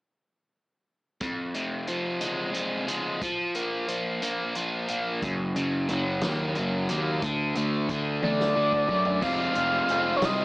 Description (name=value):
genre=indie rock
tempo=60 BPM (dotted quarters)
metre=6/8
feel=straight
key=unclear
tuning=A4 = 440 Hz
part: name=biting overdriven guitar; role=riff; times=1.2-10.4 s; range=F2 to F4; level=-27 LUFS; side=equal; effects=none
part: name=vintage drum kit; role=drums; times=1.2-10.4 s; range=crash cymbal, hi-hat, kick drum, snare drum, toms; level=-35 LUFS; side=equal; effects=none
part: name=fuzz picked electric bass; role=bass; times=5.2-10.4 s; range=F1 to F#2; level=-29 LUFS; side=equal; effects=overdrive
part: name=sync lead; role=melody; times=8.2-10.4 s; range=Db5 to F5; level=-25 LUFS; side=equal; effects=chorus, analog delay
room=light reverb, studio ambience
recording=echo-heavy mix, small speaker sound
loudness=-25 LUFS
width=side -25 dB against mid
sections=1.2-9.2 A section; 9.2-10.4 B section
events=drum fill 8.2-9.2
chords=1.2 Fm; 3.2 Bb5/F; 5.2 Gb; 7.2 D; 9.2 Fm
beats=| 1.21 2.21 | 3.22 4.22 | 5.22 6.22 | 7.22 8.22 | 9.22 10.22